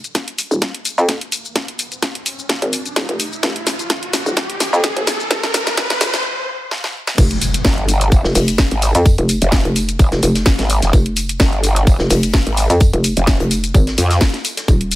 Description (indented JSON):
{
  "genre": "bass house",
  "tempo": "128 BPM",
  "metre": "4/4",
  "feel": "swing 54% on 16ths",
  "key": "F minor",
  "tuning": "A4 = 440 Hz",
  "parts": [
    { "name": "hollow knocking FM bass", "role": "bass", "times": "0.0-15.0 s", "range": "Eb1 to F2", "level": "-17 LUFS", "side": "equal", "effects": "overdrive, sidechain pumping, high-pass filter" },
    { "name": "garage drum kit", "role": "drums", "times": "0.0-15.0 s", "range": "crash cymbal, hi-hat, shaker, snare drum", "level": "-19 LUFS", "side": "left 1 dB", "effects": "high-pass filter on hats, high-pass filter on toms, high-pass filter on snare, high-pass filter on perc, high-pass filter on cymbals" },
    { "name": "riser and impact", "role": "sound effects", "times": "2.1-9.1 s", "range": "none", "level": "-24 LUFS", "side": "equal", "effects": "none" },
    { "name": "electronic kick drum", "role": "drums", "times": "0.1-14.8 s", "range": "none", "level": "-13 LUFS", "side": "equal", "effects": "high-pass filter on kick" },
    { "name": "big rock drum kit", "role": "drums", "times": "7.2-15.0 s", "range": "hi-hat, snare drum, tambourine", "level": "-29 LUFS", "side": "equal", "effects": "high-pass filter on hats, high-pass filter on snare, high-pass filter on perc, high-pass filter on room" },
    { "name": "growl bass", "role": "bass", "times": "7.7-14.2 s", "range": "F1 to F2", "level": "-15 LUFS", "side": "equal", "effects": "chorus, overdrive, sidechain pumping" }
  ],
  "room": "small room ambience",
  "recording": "high-pass filter",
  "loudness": "-14 LUFS",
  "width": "side -16 dB against mid",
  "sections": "0.0-7.2 A section; 7.2-15.0 B section",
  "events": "build-up 0.0-7.2; drum fill 0.0-6.2, 6.7-7.2; riser 2.1-6.2; stop 6.2-7.2; drop 7.2-15.0; impact 7.2-9.1",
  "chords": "none"
}